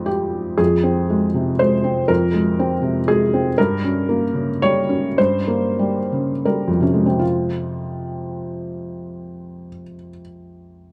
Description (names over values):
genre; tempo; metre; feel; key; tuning
neoclassical minimalist piano; 77-123 BPM; 3/4; rubato; F minor; A4 = 440 Hz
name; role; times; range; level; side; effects
felt-muted upright piano; solo; 0.0-10.9 s; F2 to Db5; -20 LUFS; equal; none
room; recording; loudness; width
light reverb; dark, warm production, faint mains hum; -19 LUFS; mono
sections
0.6-7.2 A section; 7.2-10.9 B section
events
slowing down 2.8-7.2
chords
0.0 Fmadd9; 0.6 Fm; 3.6 Gdim; 7.2 Fm